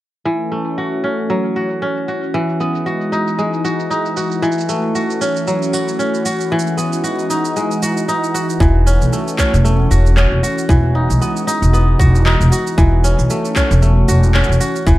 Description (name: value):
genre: folktronica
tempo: 115 BPM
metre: 4/4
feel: swing 56% on 16ths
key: unclear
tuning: A4 = 443 Hz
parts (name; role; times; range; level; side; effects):
- warm analog pad; sustained chords; 0.3-15.0 s; E3 to F#4; -21 LUFS; equal; chorus
- kora; arpeggios; 0.3-15.0 s; E3 to F#4; -19 LUFS; equal; low-pass filter, tape echo
- electronic shaker and handclaps; drums; 0.3-15.0 s; none; -25 LUFS; right 2 dB; low-pass filter on perc, low-pass filter on snare, low-pass filter on room
- upright bass; bass; 8.6-15.0 s; E1 to B1; -12 LUFS; equal; none
- electronic kick drum; drums; 8.6-15.0 s; none; -14 LUFS; equal; none
room: light reverb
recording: dark, warm production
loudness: -13 LUFS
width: side -16 dB against mid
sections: 0.3-8.6 A section; 8.6-15.0 B section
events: none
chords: 0.3 F#m7/E; 2.3 Emaj9; 4.4 A6/E; 6.5 Emaj9; 8.6 F#m7/E; 10.7 Emaj9; 12.8 A6/E